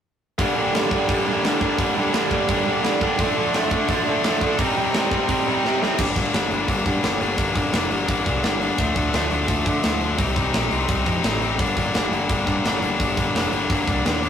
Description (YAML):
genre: punk rock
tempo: 171 BPM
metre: 4/4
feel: straight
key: G minor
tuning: A4 = 439 Hz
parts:
  - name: overdriven electric guitar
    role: riff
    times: 0.4-6.0 s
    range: G2 to D4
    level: -22 LUFS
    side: right 4 dB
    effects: none
  - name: tight distorted guitar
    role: riff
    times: 0.4-14.3 s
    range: G2 to Eb4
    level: -22 LUFS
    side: left 3 dB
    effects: distortion
  - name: tight metal drum kit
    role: drums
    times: 0.4-14.3 s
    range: crash cymbal, hi-hat, kick drum, snare drum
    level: -25 LUFS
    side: right 1 dB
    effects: none
  - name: fuzz picked electric bass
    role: bass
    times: 6.0-14.3 s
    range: F1 to D3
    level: -27 LUFS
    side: right 1 dB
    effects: overdrive
room: moderate stone room reverb, RT60 1.3 s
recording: rough rehearsal-room recording, warm saturation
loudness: -19 LUFS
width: side -8 dB against mid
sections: 0.4-6.0 A section; 6.0-14.3 B section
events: drum fill 5.6-6.0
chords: 0.4 Gm; 3.2 Dm; 4.6 Cm; 6.0 Gm; 8.8 Dm; 10.2 Cm; 11.6 Gm